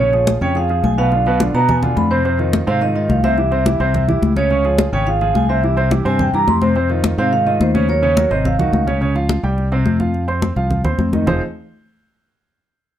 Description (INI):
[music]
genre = Afro-Cuban jazz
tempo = 213 BPM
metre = 4/4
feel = straight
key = F minor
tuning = A4 = 440 Hz
[part]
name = vibraphone with medium mallets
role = melody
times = 0.0-8.8 s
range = C5 to C6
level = -19 LUFS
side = right 1 dB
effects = plate reverb
[part]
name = warm grand piano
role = accompaniment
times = 0.0-11.4 s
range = B2 to C6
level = -20 LUFS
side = right 2 dB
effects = none
[part]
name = fingered electric bass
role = bass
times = 0.0-11.4 s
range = F1 to B2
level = -19 LUFS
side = equal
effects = none
[part]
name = congas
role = percussion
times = 0.1-11.3 s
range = none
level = -20 LUFS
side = left 2 dB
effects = none
[sound]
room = light reverb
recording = dark, warm production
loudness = -14 LUFS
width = side -11 dB against mid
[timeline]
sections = 0.0-9.0 A section; 9.0-11.3 B section; 11.3-12.4 C section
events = none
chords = 0.0 Bbm7; 1.1 Bdim7; 2.2 Fm7; 3.4 C; 4.5 Db; 5.6 C; 6.8 Fm7; 7.9 Ebm7; 8.4 Ab7; 9.0 Dbmaj7; 9.6 Csus4; 10.1 F5; 10.7 Csus4; 11.3 Fm7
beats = 0.27 0.55 0.83 | 1.12 1.40 1.68 1.96 | 2.25 2.53 2.81 3.09 | 3.38 3.66 3.94 4.22 | 4.50 4.79 5.07 5.35 | 5.63 5.91 6.20 6.48 | 6.76 7.04 7.32 7.60 | 7.89 8.17 8.45 8.73 | 9.01 9.29 9.58 9.86 | 10.14 10.42 10.70 10.99 | 11.27